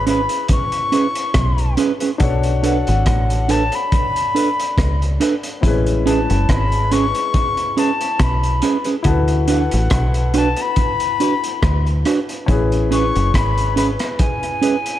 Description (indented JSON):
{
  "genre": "lovers rock reggae",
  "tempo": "70 BPM",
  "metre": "4/4",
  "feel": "swing 55% on 16ths",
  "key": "A major",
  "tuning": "A4 = 441 Hz",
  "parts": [
    { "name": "reedy silver concert flute", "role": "melody", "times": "0.0-15.0 s", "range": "F#5 to C#6", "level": "-22 LUFS", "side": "left 3 dB", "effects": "tape echo" },
    { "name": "warm grand piano", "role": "accompaniment", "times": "0.0-15.0 s", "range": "G#3 to C#5", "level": "-25 LUFS", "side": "left 4 dB", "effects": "dub echo" },
    { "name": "deep dub fingered electric bass", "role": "bass", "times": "0.0-14.0 s", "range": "F#1 to D2", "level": "-18 LUFS", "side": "equal", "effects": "none" },
    { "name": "mellow electric guitar", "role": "stabs", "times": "0.1-14.8 s", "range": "C#4 to B4", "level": "-21 LUFS", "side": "right 5 dB", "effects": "spring reverb, dub echo" },
    { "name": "crunchy breakbeat drum kit", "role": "drums", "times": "0.1-15.0 s", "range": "hi-hat, kick drum, rim click", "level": "-22 LUFS", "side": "equal", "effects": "dub echo" }
  ],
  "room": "small room reverb",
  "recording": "none",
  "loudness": "-15 LUFS",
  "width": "side -12 dB against mid",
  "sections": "0.0-15.0 A section",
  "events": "none",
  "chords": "0.0 Amaj9 (rootless); 2.2 Bm7; 5.6 Amaj9; 9.1 D6; 12.5 Amaj9",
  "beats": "0.49 1.35 | 2.21 3.06 3.92 4.78 | 5.63 6.49 7.34 8.20 | 9.05 9.91 10.77 11.62 | 12.48 13.33 14.19"
}